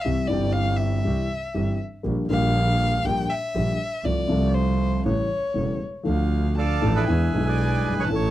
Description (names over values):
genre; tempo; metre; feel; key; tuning
tango; 120 BPM; 4/4; rubato; unclear; A4 = 441 Hz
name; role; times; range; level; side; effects
warm violin; second line; 0.0-8.3 s; C5 to A5; -28 LUFS; left 2 dB; none
dark concert grand piano; accompaniment; 0.0-8.3 s; E1 to A4; -24 LUFS; left 1 dB; none
bright double bass; bass; 0.1-8.3 s; E1 to E2; -25 LUFS; right 2 dB; none
bandoneon; melody; 6.6-8.3 s; G#4 to F5; -27 LUFS; right 6 dB; none
room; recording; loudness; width
little or no reverb; dry, close 1970s-style studio recording; -21 LUFS; side -14 dB against mid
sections
0.0-6.1 A section; 6.1-8.3 B section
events
violin solo 0.0-6.1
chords
0.0 C; 2.0 Gm/Bb; 4.0 F/C; 5.0 A7; 6.1 Dm; 7.1 E7